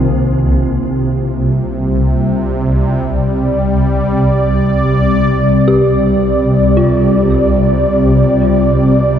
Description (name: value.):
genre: dark ambient drone.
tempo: free time.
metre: none.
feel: none.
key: unclear.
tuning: A4 = 440 Hz.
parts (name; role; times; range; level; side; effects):
sweeping resonant pad; sustained chords; 0.0-9.2 s; C3 to D5; -12 LUFS; equal; chorus.
swarming drone; drone; 0.0-9.2 s; C2 to C3; -15 LUFS; right 1 dB; built-in reverb.
dark detuned synth bell; arpeggios; 5.7-9.2 s; F4 to G4; -18 LUFS; left 1 dB; chorus, phaser, diffuse ambient delay.
room: moderate huge ambient reverb, RT60 7.4 s.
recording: none.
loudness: -10 LUFS.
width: side -9 dB against mid.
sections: 0.1-9.2 A section.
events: filter sweep on synth drone 0.1-9.2.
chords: 0.1 C5.